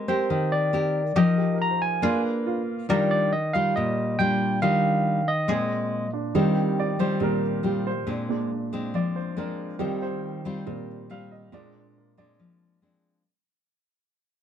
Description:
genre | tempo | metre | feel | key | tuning
bossa nova | 139 BPM | 4/4 | straight | Eb major | A4 = 440 Hz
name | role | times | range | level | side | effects
koto | second line | 0.0-7.5 s | F4 to Bb4 | -32 LUFS | equal | none
clear grand piano | accompaniment | 0.0-3.1, 6.1-13.3 s | Bb2 to F5 | -30 LUFS | right 4 dB | none
nylon-string guitar | accompaniment | 0.0-13.2 s | Bb2 to Cb5 | -25 LUFS | left 2 dB | none
barky tine electric piano | melody | 0.1-6.1 s | C5 to Bb5 | -25 LUFS | right 1 dB | none
room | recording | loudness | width
light reverb | dark, warm production | -22 LUFS | side -9 dB against mid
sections
0.0-6.3 A section; 6.3-13.3 B section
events
fade-out 6.3-13.3; grand piano solo 6.3-13.3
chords
0.0 Abmaj9; 1.2 F9sus4; 2.0 Bb7b9; 2.9 Ebmaj9; 5.5 Bb9; 6.3 Eb69; 8.1 Bb9; 9.8 Eb69; 11.5 Bb9

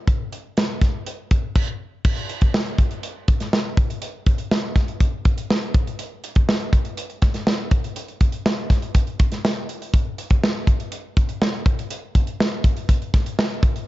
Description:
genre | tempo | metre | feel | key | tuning
pop | 122 BPM | 4/4 | straight | none | none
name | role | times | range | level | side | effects
modern studio drum kit | drums | 0.1-13.9 s | crash cymbal, hi-hat, kick drum, snare drum | -18 LUFS | equal | none
room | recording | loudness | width
light reverb | dark, warm production, nothing above 7.6 kHz | -19 LUFS | side -16 dB against mid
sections
0.0-2.0 A section; 2.0-13.9 B section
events
none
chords
none

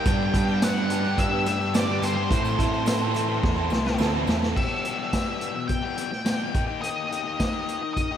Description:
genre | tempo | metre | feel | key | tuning
indie rock | 106 BPM | 4/4 | straight | unclear | A4 = 440 Hz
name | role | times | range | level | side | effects
octave-fuzz lead guitar | melody | 0.0-8.2 s | C5 to G5 | -30 LUFS | left 1 dB | distortion
biting overdriven guitar | riff | 0.0-8.2 s | E2 to A4 | -30 LUFS | left 9 dB | slapback echo
overdriven electric guitar | riff | 0.0-4.6 s | G2 to A4 | -29 LUFS | right 10 dB | ensemble chorus
growling picked electric bass | bass | 0.1-4.5 s | C2 to A2 | -27 LUFS | right 1 dB | overdrive
vintage drum kit | drums | 0.1-8.1 s | crash cymbal, hi-hat, kick drum, snare drum, tambourine | -26 LUFS | equal | none
tambourine | percussion | 0.3-4.5 s | none | -46 LUFS | left 2 dB | none
room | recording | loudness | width
moderate lush hall reverb, RT60 2.3 s | big arena sound | -22 LUFS | side -9 dB against mid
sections
0.0-4.6 A section; 4.6-8.2 B section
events
drum fill 3.4-4.6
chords
0.1 G; 2.3 Am; 4.6 Em; 6.5 Eb

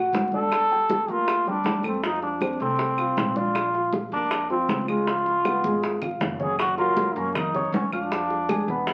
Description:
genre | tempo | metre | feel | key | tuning
Afro-Cuban jazz | 158 BPM | 4/4 | straight | unclear | A4 = 440 Hz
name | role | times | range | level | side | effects
warm grand piano | accompaniment | 0.0-8.9 s | F3 to E#6 | -31 LUFS | equal | none
upright bass | bass | 0.0-8.9 s | Gb1 to F#2 | -39 LUFS | equal | none
bongos | percussion | 0.1-8.9 s | none | -33 LUFS | equal | none
congas | percussion | 0.1-8.9 s | none | -36 LUFS | equal | none
trombone with metal mute | melody | 0.3-8.9 s | C4 to A4 | -27 LUFS | equal | none
claves | percussion | 0.5-8.7 s | none | -41 LUFS | equal | none
room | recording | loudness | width
wet club reverb, RT60 0.8 s | very old 78 rpm record, vinyl crackle | -24 LUFS | mono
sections
0.0-6.6 A section; 6.6-8.9 B section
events
drum fill 5.5-6.6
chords
0.0 D; 0.5 Gm7; 2.0 F; 3.6 Bbadd9; 5.1 Db7; 6.6 F#maj7; 8.1 Fm

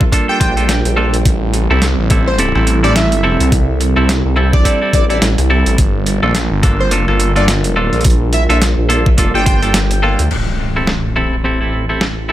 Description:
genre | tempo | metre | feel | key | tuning
glitch hop | 106 BPM | 4/4 | swing 58% on 16ths | A phrygian | A4 = 440 Hz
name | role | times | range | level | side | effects
dark analog pad | sustained chords | 0.0-12.3 s | G3 to Bb4 | -22 LUFS | right 3 dB | chorus, sidechain pumping
semi-hollow electric guitar | stabs | 0.0-12.3 s | Bb3 to C5 | -18 LUFS | equal | sidechain pumping, digital delay
phased detuned saw bass | bass | 0.0-12.3 s | F1 to D2 | -15 LUFS | equal | phaser
electronic kick drum | drums | 0.0-9.6 s | none | -13 LUFS | equal | overdrive
boom bap sampler-style drum kit | drums | 0.1-12.1 s | crash cymbal, hi-hat, rim click, snare drum | -19 LUFS | equal | overdrive
plucky unison lead | melody | 0.3-10.3 s | C5 to G5 | -21 LUFS | equal | digital delay
impact | sound effects | 10.3-12.3 s | none | -24 LUFS | equal | none
room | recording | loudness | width
digital ambience | none | -11 LUFS | side -13 dB against mid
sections
0.0-10.3 A section; 10.3-12.3 B section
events
kick drops out 9.7-10.3; impact 10.3-12.3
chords
0.0 Gm7; 1.3 Am7; 5.8 Gm7; 10.3 Am7

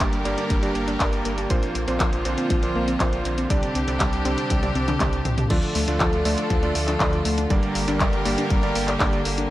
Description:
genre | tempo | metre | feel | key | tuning
italo disco | 120 BPM | 4/4 | straight | G minor | A4 = 439 Hz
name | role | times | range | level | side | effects
rich chamber string section | sustained chords | 0.0-9.5 s | C3 to Bb4 | -26 LUFS | equal | none
wide unison pluck | arpeggios | 0.0-9.5 s | F3 to D4 | -29 LUFS | left 2 dB | analog delay
bright electric grand piano | stabs | 0.0-9.2 s | G2 to D5 | -28 LUFS | right 3 dB | analog delay
round analog bass | bass | 0.0-9.5 s | G1 to D2 | -28 LUFS | equal | none
electronic kick drum | drums | 0.0-9.1 s | none | -24 LUFS | equal | small room ambience
house drum kit | drums | 0.0-9.5 s | crash cymbal, handclaps, hi-hat, toms | -27 LUFS | equal | small room ambience
room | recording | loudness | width
light reverb | dry, gritty hardware recording | -20 LUFS | side -15 dB against mid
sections
0.0-5.5 A section; 5.5-9.5 B section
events
drum fill 4.5-5.5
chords
0.0 Gm; 1.5 Bbadd9; 3.5 Csus2; 5.5 Dm; 7.5 Gm

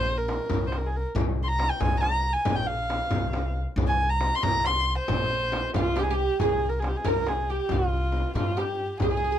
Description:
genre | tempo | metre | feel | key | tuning
Persian modal ensemble | 92 BPM (dotted quarters) | 6/8 | straight | C dastgah shur | A4 = 439 Hz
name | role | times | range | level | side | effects
warm kamancheh | melody | 0.0-9.4 s | F4 to C6 | -27 LUFS | equal | none
upright bass | bass | 0.0-9.4 s | Bb1 to G2 | -29 LUFS | equal | none
tombak | percussion | 0.1-9.3 s | none | -32 LUFS | right 3 dB | none
frame drum | percussion | 0.3-9.1 s | none | -32 LUFS | left 4 dB | none
oud | second line | 5.8-9.4 s | F4 to Bb4 | -30 LUFS | right 4 dB | none
room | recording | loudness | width
little or no reverb | close, detailed microphones | -23 LUFS | side -10 dB against mid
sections
0.0-6.4 A section; 6.4-9.4 B section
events
none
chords
none

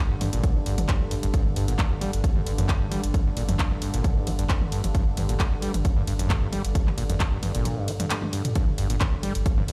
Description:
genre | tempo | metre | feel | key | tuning
driving peak-time techno | 133 BPM | 4/4 | straight | G harmonic minor | A4 = 440 Hz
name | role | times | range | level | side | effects
deep dark ambient pad | drone | 0.1-9.7 s | G2 to D3 | -36 LUFS | equal | chorus, built-in reverb, sidechain pumping
overdriven acid bass | riff | 0.1-9.7 s | G1 to G3 | -32 LUFS | equal | distortion, cassette tape, sidechain pumping, tape echo
saturated sub bass | bass | 0.1-9.7 s | G1 | -31 LUFS | equal | overdrive, sidechain pumping, low-pass filter
punchy analog drum machine | drums | 0.2-9.7 s | handclaps, hi-hat, ride cymbal, toms | -34 LUFS | equal | none
electronic kick drum | drums | 0.4-9.6 s | none | -27 LUFS | equal | none
room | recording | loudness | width
little or no reverb | played on a big sound system in a bare room, large studio reverb | -25 LUFS | mono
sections
0.0-9.7 A section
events
drum fill 8.1-8.6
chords
0.0 G5

